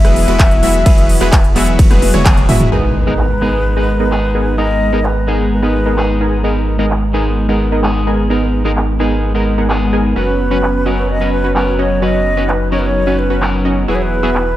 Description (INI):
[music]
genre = EDM, festival progressive house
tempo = 129 BPM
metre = 4/4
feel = straight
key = G# minor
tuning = A4 = 440 Hz
[part]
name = breathy mellow concert flute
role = melody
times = 0.0-6.2, 10.2-14.6 s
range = B4 to E5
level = -19 LUFS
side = equal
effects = tape echo
[part]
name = clean electric guitar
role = accompaniment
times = 0.0-14.3 s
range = F#3 to B4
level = -21 LUFS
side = left 2 dB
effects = spring reverb, sidechain pumping
[part]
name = lush unison pad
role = sustained chords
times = 0.0-14.6 s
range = E3 to A#5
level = -22 LUFS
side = equal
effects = chorus, sidechain pumping
[part]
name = warm grand piano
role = arpeggios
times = 0.0-2.7 s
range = B4 to E5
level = -23 LUFS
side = right 2 dB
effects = sidechain pumping, tape echo
[part]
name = supersaw stab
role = riff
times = 0.0-14.4 s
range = G#3 to G#5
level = -19 LUFS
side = right 1 dB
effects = sidechain pumping, low-pass filter, tape echo
[part]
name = saturated sub bass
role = bass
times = 0.0-14.6 s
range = E1 to G#1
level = -18 LUFS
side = equal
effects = sidechain pumping
[part]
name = big-room dance drum kit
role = drums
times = 0.0-14.4 s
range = crash cymbal, handclaps, hi-hat, ride cymbal, rim click, toms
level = -19 LUFS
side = equal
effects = overdrive, low-pass filter on hats, low-pass filter on cymbals, low-pass filter on snare, low-pass filter on toms
[part]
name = electronic kick drum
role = drums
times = 0.4-2.3 s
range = none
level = -10 LUFS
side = equal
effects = overdrive
[part]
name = impact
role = sound effects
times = 2.7-4.6 s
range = none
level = -22 LUFS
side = equal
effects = none
[sound]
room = light reverb, digital ambience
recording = dark, warm production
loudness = -11 LUFS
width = side -14 dB against mid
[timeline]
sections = 0.0-2.7 A section; 2.7-14.6 B section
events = drop 0.0-2.7; drum fill 1.8-2.7; band accent 2.3; impact 2.7-4.6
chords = 0.0 Eadd9; 2.7 G#madd9; 10.2 F#sus4; 13.9 Eadd9